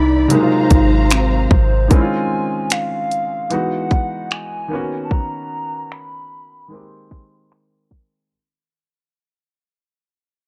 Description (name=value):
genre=contemporary R&B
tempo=75 BPM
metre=4/4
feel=swing 54% on 16ths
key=unclear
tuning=A4 = 440 Hz
part: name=hollow clarinet-like synth lead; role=melody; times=0.0-7.9 s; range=C4 to C6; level=-23 LUFS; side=equal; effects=chorus
part: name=warm concert grand piano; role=accompaniment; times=0.0-8.3 s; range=C3 to D5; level=-24 LUFS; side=equal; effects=none
part: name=muted studio string section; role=sustained chords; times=0.0-1.9 s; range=E3 to B5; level=-27 LUFS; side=equal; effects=none
part: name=clean 808-style bass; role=bass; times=0.0-1.9 s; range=Ab1 to C2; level=-18 LUFS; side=equal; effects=none
part: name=trap drum kit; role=drums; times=0.3-8.1 s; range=finger snaps, hi-hat, kick drum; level=-17 LUFS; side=equal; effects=overdrive
room=little or no reverb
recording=dry, gritty hardware recording, cassette tape, low-pass filter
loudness=-17 LUFS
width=mono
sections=0.0-1.9 A section; 1.9-8.3 B section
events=fade-out 1.9-8.3; filter sweep 1.9-8.3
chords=0.3 Ab13; 1.9 Dbmaj9; 3.5 Emaj9; 4.7 Cbmaj9; 6.7 Abmaj9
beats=0.31 1.11 | 1.91 2.71 3.51 4.31 | 5.11 5.91 6.71 7.51